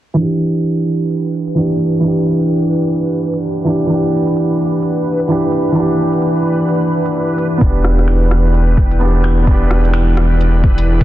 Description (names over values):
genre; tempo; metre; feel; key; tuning
future garage; 129 BPM; 4/4; swing 60% on 16ths; E minor; A4 = 440 Hz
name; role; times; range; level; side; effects
felt-muted upright piano; accompaniment; 0.1-11.0 s; E3 to G4; -15 LUFS; right 1 dB; vintage 12-bit sampler grit, sidechain pumping, low-pass filter, dub echo
airy breathy pad; sustained chords; 0.2-11.0 s; E3 to G5; -23 LUFS; left 1 dB; chorus, sidechain pumping
organic electronic drum kit; drums; 0.2-10.9 s; finger snaps, hi-hat, rim click; -26 LUFS; left 1 dB; overdrive, studio reverb, soft clipping on snare
backwards swelling texture; texture; 1.3-11.0 s; B4; -25 LUFS; equal; built-in reverb
warm sub bass; bass; 7.6-11.0 s; E1; -13 LUFS; equal; sidechain pumping
electronic kick drum; drums; 7.6-11.0 s; none; -13 LUFS; equal; overdrive, studio reverb
room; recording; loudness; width
light reverb, digital ambience; dense, heavily limited modern master, vinyl crackle, low-pass filter; -12 LUFS; side -14 dB against mid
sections
0.2-11.0 A section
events
fade-in on analog synth pad 0.2-11.0; filter sweep on felt piano 0.2-11.0; filter sweep 0.2-11.0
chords
0.2 Em7; 7.6 G/E